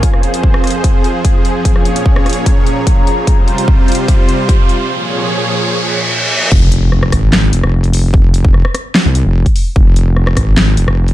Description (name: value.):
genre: heavy wobble dubstep.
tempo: 148 BPM.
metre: 4/4.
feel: half-time.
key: F minor.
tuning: A4 = 441 Hz.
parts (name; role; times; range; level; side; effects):
supersaw pad; sustained chords; 0.0-6.5 s; F2 to Db5; -18 LUFS; equal; sidechain pumping.
big-room dance drum kit; drums; 0.0-11.1 s; crash cymbal, handclaps, hi-hat, rim click, snare drum; -17 LUFS; left 1 dB; none.
electronic kick drum; drums; 0.0-10.5 s; none; -11 LUFS; equal; none.
riser, reverse cymbal and impact; sound effects; 3.3-8.1 s; none; -19 LUFS; right 1 dB; none.
airy breathy pad; texture; 0.0-4.9 s; C4 to C6; -19 LUFS; right 1 dB; chorus, sidechain pumping.
wobble bass; bass; 6.5-11.1 s; F1 to C2; -11 LUFS; equal; chorus, overdrive.
room: digital ambience.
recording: dark, warm production.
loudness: -9 LUFS.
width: side -14 dB against mid.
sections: 0.0-6.5 A section; 6.5-11.1 B section.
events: build-up 0.0-6.5; drum fill 3.3-4.9; riser 3.3-6.5; break 4.9-6.5; reverse cymbal 5.7-6.5; drop 6.5-11.1; impact 6.5-8.1.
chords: 0.0 Fm; 1.7 Bbm7; 3.3 Csus4; 4.9 Bbm7; 6.5 F5.